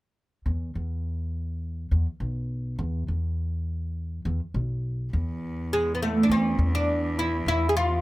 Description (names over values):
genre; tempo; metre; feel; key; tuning
Turkish makam ensemble; 103 BPM; 4/4; straight; E makam hicaz; A4 = 440 Hz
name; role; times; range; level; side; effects
upright bass; bass; 0.5-8.0 s; B1 to E2; -27 LUFS; equal; none
clear cello; drone; 5.1-8.0 s; E2; -34 LUFS; left 1 dB; none
oud; melody; 5.7-8.0 s; G#3 to G#4; -23 LUFS; right 1 dB; none
room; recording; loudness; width
little or no reverb; close, detailed microphones; -25 LUFS; side -18 dB against mid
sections
0.5-5.1 A section; 5.1-8.0 B section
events
none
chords
none